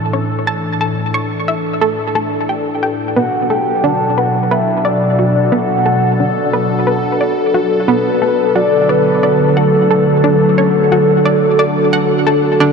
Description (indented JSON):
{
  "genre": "ambient",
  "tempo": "89 BPM",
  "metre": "4/4",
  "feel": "straight",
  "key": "unclear",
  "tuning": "A4 = 440 Hz",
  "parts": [
    { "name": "phased analog pad", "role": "sustained chords", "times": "0.0-12.7 s", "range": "A2 to A4", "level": "-15 LUFS", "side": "equal", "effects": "phaser, chorus" },
    { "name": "analog pluck", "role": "riff", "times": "0.1-12.7 s", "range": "B3 to C#6", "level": "-18 LUFS", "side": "right 1 dB", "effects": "chorus, analog delay" },
    { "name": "soft octave-layered synth lead", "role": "melody", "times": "3.2-12.7 s", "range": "A4 to A5", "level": "-16 LUFS", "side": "left 1 dB", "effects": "chorus, analog delay" }
  ],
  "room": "wet huge ambient reverb, RT60 7.6 s",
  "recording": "in a vast, echoing space",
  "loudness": "-12 LUFS",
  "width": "side -5 dB against mid",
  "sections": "0.0-12.7 A section",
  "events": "fade-in on analog synth pad 0.0-12.7",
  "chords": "0.0 Asus4; 3.2 Bm7; 8.6 Dmaj7",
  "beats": "| 0.47 1.14 1.82 2.49 | 3.17 3.84 4.51 5.19 | 5.86 6.54 7.21 7.89 | 8.56 9.23 9.91 10.58 | 11.26 11.93 12.61"
}